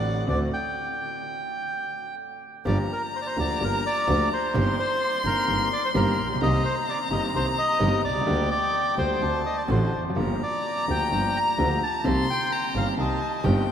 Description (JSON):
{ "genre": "tango", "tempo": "128 BPM", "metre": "4/4", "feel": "rubato", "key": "G minor", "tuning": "A4 = 440 Hz", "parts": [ { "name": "bandoneon", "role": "melody", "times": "0.0-13.6 s", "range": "Bb4 to Bb5", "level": "-27 LUFS", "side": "equal", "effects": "none" }, { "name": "warm violin", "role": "second line", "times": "0.0-13.7 s", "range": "F#5 to C6", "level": "-30 LUFS", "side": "left 3 dB", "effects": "none" }, { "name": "clear concert grand piano", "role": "accompaniment", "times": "0.0-13.6 s", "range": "G1 to G4", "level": "-28 LUFS", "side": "equal", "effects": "none" }, { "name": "clear double bass", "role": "bass", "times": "0.0-13.6 s", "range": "F1 to D2", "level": "-27 LUFS", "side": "right 2 dB", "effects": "none" } ], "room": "wet cathedral reverb, RT60 6.0 s", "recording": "in a vast, echoing space", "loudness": "-22 LUFS", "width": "side -9 dB against mid", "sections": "0.0-2.7 A section; 2.7-13.7 B section", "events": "stop 0.7-2.7", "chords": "0.0 D7; 0.7 N.C.; 2.7 Gm7; 4.5 Eb6/G; 6.4 Cm7; 8.3 Gm/D; 9.2 D7; 10.2 Gm7; 12.0 Cm7" }